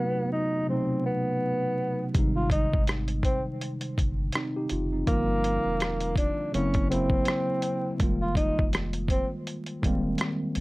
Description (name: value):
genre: lo-fi hip hop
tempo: 82 BPM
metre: 4/4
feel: swing 56% on 16ths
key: Ab major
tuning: A4 = 440 Hz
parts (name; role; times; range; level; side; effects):
- breathy tenor saxophone; melody; 0.0-9.3 s; Bb3 to F4; -29 LUFS; equal; low-pass filter
- mellow tine electric piano; accompaniment; 0.0-10.6 s; B2 to G4; -29 LUFS; equal; medium stereo tremolo, cassette tape, low-pass filter
- lo-fi sampler-style drum kit; drums; 2.1-10.6 s; hi-hat, kick drum, rim click; -27 LUFS; equal; none
- warm sub bass; bass; 2.2-10.6 s; Eb1 to Bb1; -32 LUFS; equal; none
room: light reverb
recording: vinyl crackle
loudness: -24 LUFS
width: side -21 dB against mid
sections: 0.0-2.1 A section; 2.1-10.6 B section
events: none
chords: 0.0 B7b9; 2.1 Abmaj7; 5.1 Gm7; 6.5 Gb7#11; 8.0 Fm11